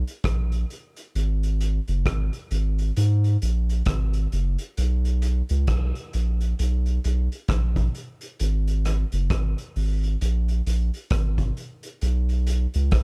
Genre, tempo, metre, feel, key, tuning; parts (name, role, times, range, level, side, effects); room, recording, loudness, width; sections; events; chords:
roots reggae; 66 BPM; 4/4; swing 60% on 16ths; A4 = 440 Hz
soft dub sub bass; bass; 0.0-13.0 s; F#1 to G#2; -24 LUFS; equal
vintage drum kit; drums; 0.1-13.0 s; hi-hat, kick drum, rim click; -30 LUFS; equal
little or no reverb; dark, warm production; -24 LUFS; mono
0.0-13.0 A section